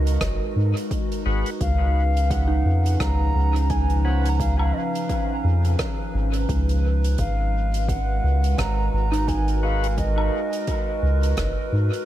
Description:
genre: ambient dub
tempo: 86 BPM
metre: 4/4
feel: swing 58% on 16ths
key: G# dorian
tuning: A4 = 437 Hz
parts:
  - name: wooden flute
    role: melody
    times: 0.0-11.3 s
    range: D#5 to A#5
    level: -30 LUFS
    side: equal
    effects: dub echo
  - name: warbly tape-like pad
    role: sustained chords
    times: 0.0-12.1 s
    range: C#3 to B4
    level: -29 LUFS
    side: right 1 dB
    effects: chorus, built-in reverb
  - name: soft synth bell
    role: arpeggios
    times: 0.0-12.1 s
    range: D#4 to A#5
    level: -33 LUFS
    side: right 2 dB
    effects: chorus, tape echo
  - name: soft dub sub bass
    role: bass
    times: 0.0-11.9 s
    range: F#1 to G#2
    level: -20 LUFS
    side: equal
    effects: tube saturation
  - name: soft-mallet drum kit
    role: drums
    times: 0.1-12.0 s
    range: hi-hat, rim click, woodblock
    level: -34 LUFS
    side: right 2 dB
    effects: dub echo
  - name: electronic kick drum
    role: drums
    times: 0.2-11.5 s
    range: none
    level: -28 LUFS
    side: equal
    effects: none
  - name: overdriven tonewheel organ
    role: stabs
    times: 1.3-4.3, 9.6-9.9 s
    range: E#3 to B4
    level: -36 LUFS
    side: left 5 dB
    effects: slow rotary speaker, dub echo
room: studio reverb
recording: echo-heavy mix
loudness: -20 LUFS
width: side -13 dB against mid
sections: 0.0-12.1 A section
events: none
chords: 0.0 G#m7; 1.6 C#7; 7.2 G#m7

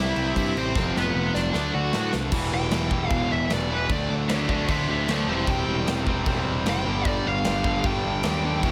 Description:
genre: punk rock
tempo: 152 BPM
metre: 4/4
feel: straight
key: G major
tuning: A4 = 438 Hz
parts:
  - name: high-gain lead guitar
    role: melody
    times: 0.0-8.7 s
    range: B3 to A5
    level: -30 LUFS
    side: equal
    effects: distortion, digital delay
  - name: crunchy overdriven guitar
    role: riff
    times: 0.0-8.7 s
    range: E2 to D4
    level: -33 LUFS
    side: equal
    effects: none
  - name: crunchy overdriven guitar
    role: riff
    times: 0.0-8.7 s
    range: C3 to G4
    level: -36 LUFS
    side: equal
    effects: none
  - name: distorted electric guitar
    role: riff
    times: 0.0-8.7 s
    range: E2 to D4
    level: -33 LUFS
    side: equal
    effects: overdrive
  - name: fuzz picked electric bass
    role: bass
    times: 0.0-8.7 s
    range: E1 to A2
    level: -31 LUFS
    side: equal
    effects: overdrive
  - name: big rock drum kit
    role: drums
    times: 0.2-8.7 s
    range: crash cymbal, kick drum, snare drum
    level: -31 LUFS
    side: equal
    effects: none
room: light reverb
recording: none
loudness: -24 LUFS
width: mono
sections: 0.0-2.3 A section; 2.3-8.7 B section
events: half time 0.0-2.3; drum fill 0.8-2.3; lead electric guitar solo 2.3-8.7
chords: 0.0 C; 0.8 F; 1.5 D; 2.3 Em; 3.9 D; 5.3 C/E; 6.9 G

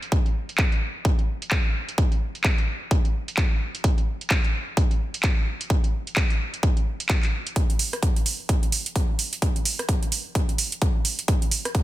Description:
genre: house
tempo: 129 BPM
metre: 4/4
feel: swing 60% on 16ths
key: none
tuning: none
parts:
  - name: garage drum kit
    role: drums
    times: 0.0-11.8 s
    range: handclaps, hi-hat, rim click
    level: -27 LUFS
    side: right 2 dB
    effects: overdrive, high-pass filter on hats, low-pass filter on hats, high-pass filter on snare, low-pass filter on snare
  - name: electronic kick drum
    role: drums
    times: 0.1-11.8 s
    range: none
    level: -22 LUFS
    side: equal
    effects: none
room: digital ambience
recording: dense, heavily limited modern master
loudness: -21 LUFS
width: side -16 dB against mid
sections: 0.0-7.6 A section; 7.6-11.8 B section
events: build-up 7.6-11.8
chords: none

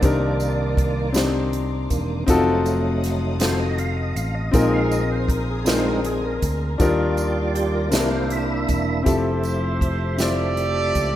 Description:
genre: slow gospel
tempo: 53 BPM (dotted quarters)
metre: 6/8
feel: straight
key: unclear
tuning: A4 = 440 Hz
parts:
  - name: warm concert grand piano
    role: accompaniment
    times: 0.0-11.2 s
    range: Bb2 to C5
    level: -23 LUFS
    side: left 3 dB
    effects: none
  - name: tonewheel organ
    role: sustained chords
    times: 0.0-11.2 s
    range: Eb3 to F5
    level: -26 LUFS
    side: right 3 dB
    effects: slow rotary speaker, overdrive, chorus vibrato
  - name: warm studio string section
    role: sustained chords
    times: 0.0-9.1 s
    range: D5 to Eb6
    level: -39 LUFS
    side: left 3 dB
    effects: none
  - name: fingered electric bass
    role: bass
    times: 0.0-11.2 s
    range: Fb1 to Eb2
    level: -25 LUFS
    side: equal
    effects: none
  - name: swinging big-band drum kit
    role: drums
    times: 0.0-11.1 s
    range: hi-hat, kick drum, snare drum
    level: -24 LUFS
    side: right 1 dB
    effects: none
  - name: tambourine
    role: percussion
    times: 0.0-11.2 s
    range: none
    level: -38 LUFS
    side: right 5 dB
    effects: none
  - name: warm horn section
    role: melody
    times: 9.1-11.2 s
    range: E4 to D5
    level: -25 LUFS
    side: right 3 dB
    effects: none
room: moderate lush hall reverb, RT60 2.1 s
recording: rough home demo mix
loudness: -19 LUFS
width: side -12 dB against mid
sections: 0.0-9.1 A section; 9.1-11.2 B section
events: tonewheel organ solo 0.0-9.1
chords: 0.0 Cm9; 2.3 F7b9; 4.5 Bb9sus4; 6.8 Ebmaj9; 7.9 C9; 9.1 Fmaj9

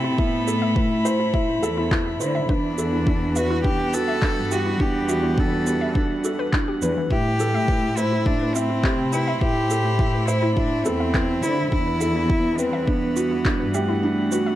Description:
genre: piano and strings electronica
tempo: 104 BPM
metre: 4/4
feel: straight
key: E minor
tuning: A4 = 440 Hz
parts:
  - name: warm cello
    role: melody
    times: 0.0-14.6 s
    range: A3 to A4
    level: -26 LUFS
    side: equal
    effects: none
  - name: warm string quartet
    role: sustained chords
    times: 0.0-14.6 s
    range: E3 to B5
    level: -30 LUFS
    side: equal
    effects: none
  - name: warbly dusty pluck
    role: arpeggios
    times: 0.0-14.5 s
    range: E3 to E5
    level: -32 LUFS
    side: left 2 dB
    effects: chorus, sidechain pumping, digital delay
  - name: felt-muted upright piano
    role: riff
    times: 0.0-14.6 s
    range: D4 to G5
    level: -25 LUFS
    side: right 1 dB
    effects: digital delay
  - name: dark studio cello section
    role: bass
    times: 0.0-13.9 s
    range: E2 to D3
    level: -26 LUFS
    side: equal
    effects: sidechain pumping
  - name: electronic kick drum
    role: drums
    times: 0.2-13.6 s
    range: none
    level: -23 LUFS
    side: equal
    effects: overdrive
  - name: electronic shaker and handclaps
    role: drums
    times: 0.5-14.4 s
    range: none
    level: -30 LUFS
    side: right 1 dB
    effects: none
room: light reverb, small room ambience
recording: none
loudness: -19 LUFS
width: side -13 dB against mid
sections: 0.0-14.6 A section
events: none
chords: 0.0 Am7; 2.5 Em11; 7.1 Am7; 11.7 Em11

